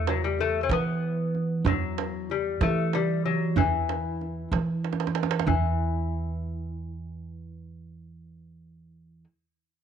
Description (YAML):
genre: Persian modal ensemble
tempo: 63 BPM (dotted quarters)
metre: 6/8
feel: straight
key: E avaz esfahan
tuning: A4 = 440 Hz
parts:
  - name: lute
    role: melody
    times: 0.0-9.2 s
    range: E3 to C4+50c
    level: -29 LUFS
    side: left 8 dB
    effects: none
  - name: upright bass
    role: bass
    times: 0.0-9.2 s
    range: E2 to E3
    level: -28 LUFS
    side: right 2 dB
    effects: none
  - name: tombak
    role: percussion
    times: 0.1-5.8 s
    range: none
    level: -29 LUFS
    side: right 11 dB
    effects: none
room: light reverb, small room ambience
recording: 1960s-style stereo with parts hard left and right, nothing above 10.6 kHz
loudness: -24 LUFS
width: side -8 dB against mid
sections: 0.0-5.5 A section; 5.5-9.3 B section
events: drum fill 4.8-5.5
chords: none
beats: 0.70 | 1.65 2.61 | 3.56 4.52 | 5.47 6.42 | 7.38 8.33